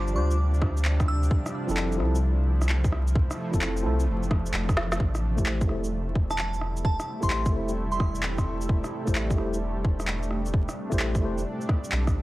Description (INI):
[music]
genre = future garage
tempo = 130 BPM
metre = 4/4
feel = swing 66% on 16ths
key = A minor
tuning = A4 = 439 Hz
[part]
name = glassy synth bell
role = melody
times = 0.0-1.4, 6.3-8.6 s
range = A5 to E6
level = -34 LUFS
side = right 1 dB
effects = chorus, phaser, analog delay
[part]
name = mellow tine electric piano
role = accompaniment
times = 0.0-11.4 s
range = F3 to C5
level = -32 LUFS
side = left 1 dB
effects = overdrive, fast stereo tremolo, sidechain pumping, low-pass filter, tape echo
[part]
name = granular cloud pad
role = sustained chords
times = 0.0-12.2 s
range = C3 to E4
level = -33 LUFS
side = equal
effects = built-in reverb, vintage 12-bit sampler grit, sidechain pumping
[part]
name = warm sub bass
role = bass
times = 0.0-12.2 s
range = E1 to D2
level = -27 LUFS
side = equal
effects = sidechain pumping
[part]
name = electronic shaker, rim click, handclaps and snare drum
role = drums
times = 0.1-12.1 s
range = none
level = -32 LUFS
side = equal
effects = none
[part]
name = electronic kick drum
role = drums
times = 0.6-12.1 s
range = none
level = -25 LUFS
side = equal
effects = none
[sound]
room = digital ambience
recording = dry, gritty hardware recording, vinyl crackle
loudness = -24 LUFS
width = side -18 dB against mid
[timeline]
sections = 0.0-5.0 A section; 5.0-12.2 B section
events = drum fill 4.8; filter sweep on tine electric piano 5.0-12.2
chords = 0.0 G7sus4; 1.3 Fmaj7; 5.0 Am7